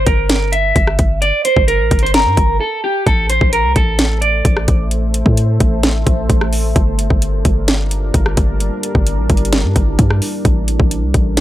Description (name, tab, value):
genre	hip hop, trap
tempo	130 BPM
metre	4/4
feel	half-time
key	unclear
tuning	A4 = 442 Hz
part	electric guitar at the edge of break-up	melody	0.0-4.9 s	G4 to E5	-16 LUFS	right 1 dB	phaser, low-pass filter, analog delay
part	warm 808-style bass	bass	0.0-11.4 s	G1 to A2	-16 LUFS	equal	none
part	trap drum kit	drums	0.1-11.4 s	hi-hat, kick drum, rim click, snare drum	-15 LUFS	equal	none
part	deep dark ambient pad	sustained chords	4.1-11.4 s	G3 to E5	-23 LUFS	equal	chorus, built-in reverb
room	little or no reverb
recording	dry, gritty hardware recording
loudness	-12 LUFS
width	side -14 dB against mid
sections	0.0-11.4 A section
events	break 2.6-3.1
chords	0.0 Gm; 3.1 Am; 6.8 Gm7; 10.4 Am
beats	0.30 0.76 | 1.22 1.68 2.14 2.60 | 3.06 3.53 3.99 4.45 | 4.91 5.37 5.83 6.30 | 6.76 7.22 7.68 8.14 | 8.60 9.06 9.53 9.99 | 10.45 10.91 11.37